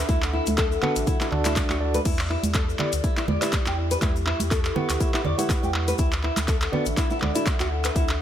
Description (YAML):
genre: afro house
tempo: 122 BPM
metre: 4/4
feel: swing 55% on 16ths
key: E dorian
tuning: A4 = 441 Hz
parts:
  - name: dark analog pad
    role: sustained chords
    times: 0.0-8.2 s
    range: D4 to C#6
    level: -33 LUFS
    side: left 1 dB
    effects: chorus, sidechain pumping
  - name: flamenco guitar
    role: arpeggios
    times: 0.0-8.1 s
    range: B3 to D5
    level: -29 LUFS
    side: left 2 dB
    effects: sidechain pumping, ping-pong delay
  - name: warm sub bass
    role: bass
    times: 0.0-8.2 s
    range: A1 to E2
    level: -28 LUFS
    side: equal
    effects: sidechain pumping
  - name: electronic kick drum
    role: drums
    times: 0.1-8.1 s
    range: none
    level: -25 LUFS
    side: equal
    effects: none
  - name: house drum kit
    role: drums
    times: 0.1-8.2 s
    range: crash cymbal, handclaps, hi-hat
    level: -29 LUFS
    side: equal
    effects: none
  - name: congas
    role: percussion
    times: 0.1-8.1 s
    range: none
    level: -31 LUFS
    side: right 4 dB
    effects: none
  - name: tube shaker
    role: percussion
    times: 0.1-8.2 s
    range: none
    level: -38 LUFS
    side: left 6 dB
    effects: none
  - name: tine electric piano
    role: stabs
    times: 0.8-7.5 s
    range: D4 to F#5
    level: -31 LUFS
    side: right 2 dB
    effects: medium tremolo, sidechain pumping, ping-pong delay
room: digital ambience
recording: none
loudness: -21 LUFS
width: side -10 dB against mid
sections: 0.0-8.2 A section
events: none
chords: 0.0 D; 2.1 Em7; 6.0 D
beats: | 0.09 0.58 1.07 1.56 | 2.05 2.55 3.04 3.53 | 4.02 4.51 5.00 5.50 | 5.99 6.48 6.97 7.46 | 7.96